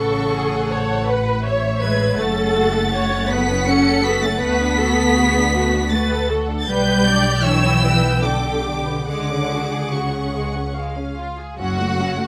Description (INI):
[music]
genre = classical, slow romantic movement for string orchestra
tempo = 69-83 BPM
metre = 3/4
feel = rubato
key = F# minor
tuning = A4 = 442 Hz
[part]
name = warm symphonic violin section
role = melody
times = 0.0-12.3 s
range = F#5 to C#7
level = -26 LUFS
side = equal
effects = none
[part]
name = warm symphonic violin section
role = second line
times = 0.0-12.3 s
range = G3 to G5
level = -28 LUFS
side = equal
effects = none
[part]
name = warm symphonic viola section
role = accompaniment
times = 0.0-12.3 s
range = F#3 to D5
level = -26 LUFS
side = equal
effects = none
[part]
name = warm symphonic cello section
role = bass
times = 0.0-12.3 s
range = F#2 to C#4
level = -24 LUFS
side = equal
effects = none
[part]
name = warm symphonic double bass section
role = bass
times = 0.0-12.3 s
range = F#1 to D2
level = -25 LUFS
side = equal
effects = none
[sound]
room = light reverb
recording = close, detailed microphones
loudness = -19 LUFS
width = mono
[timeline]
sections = 0.0-11.6 A section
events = none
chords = 0.0 F#m/A; 2.2 F#m; 4.4 D; 6.7 G/B; 9.1 C#sus4; 10.8 C#; 11.6 F#m